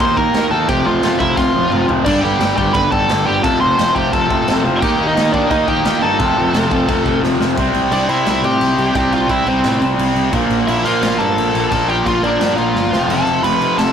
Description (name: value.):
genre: punk rock.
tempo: 174 BPM.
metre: 4/4.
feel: straight.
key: unclear.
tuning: A4 = 440 Hz.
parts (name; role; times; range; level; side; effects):
high-gain lead guitar; melody; 0.0-13.9 s; C4 to C6; -18 LUFS; right 1 dB; distortion.
distorted electric guitar; riff; 0.0-13.9 s; F2 to Eb4; -16 LUFS; equal; distortion.
sustaining fretless electric bass; bass; 0.0-13.9 s; F1 to C3; -23 LUFS; equal; none.
raw garage drum kit; drums; 0.0-13.9 s; crash cymbal, kick drum, snare drum, toms; -22 LUFS; equal; none.
room: moderate small room ambience, RT60 0.5 s.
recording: rough rehearsal-room recording, tube saturation.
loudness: -13 LUFS.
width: side -8 dB against mid.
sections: 0.0-7.6 A section; 7.6-13.9 B section.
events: drum fill 1.4-2.1, 7.2-7.6, 12.8-13.1; half time 7.6-13.9.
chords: 0.0 Eb5; 0.7 F5; 2.1 G; 3.4 F; 4.8 Eb; 6.2 F; 7.6 C; 10.3 Bb; 12.9 F.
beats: 0.00 0.35 | 0.69 1.03 1.38 1.72 | 2.07 2.41 2.75 3.10 | 3.44 3.79 4.13 4.47 | 4.82 5.16 5.51 5.85 | 6.20 6.54 6.88 7.23 | 7.57 7.92 8.26 8.61 | 8.95 9.30 9.64 9.99 | 10.34 10.68 11.03 11.37 | 11.71 12.06 12.41 12.75 | 13.10 13.44 13.79.